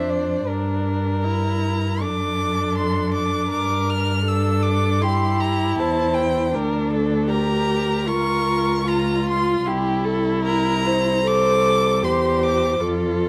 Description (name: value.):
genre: classical, slow romantic movement for string quartet.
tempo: 78 BPM.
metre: 4/4.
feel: uneven beats, rubato.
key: unclear.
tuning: A4 = 440 Hz.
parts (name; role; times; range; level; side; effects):
warm violin; melody; 0.0-12.8 s; D5 to F6; -28 LUFS; equal; none.
dark violin; second line; 0.0-13.3 s; F4 to C5; -27 LUFS; equal; none.
warm viola; accompaniment; 0.0-13.3 s; D4 to A4; -27 LUFS; equal; none.
rich cello; bass; 0.0-13.3 s; C2 to G2; -26 LUFS; equal; none.
room: moderate recital hall reverb, RT60 1.6 s.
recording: close, detailed microphones.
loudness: -21 LUFS.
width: mono.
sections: 0.0-13.3 A section.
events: none.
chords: 0.5 Gm; 2.0 D/F#; 3.5 Gm; 6.5 Bb/D; 8.1 Bbm/Db; 9.7 C7.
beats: | 0.48 1.25 2.01 2.75 | 3.51 4.26 5.03 5.79 | 6.53 7.30 8.08 8.88 | 9.66 10.44 11.25 12.03 | 12.82.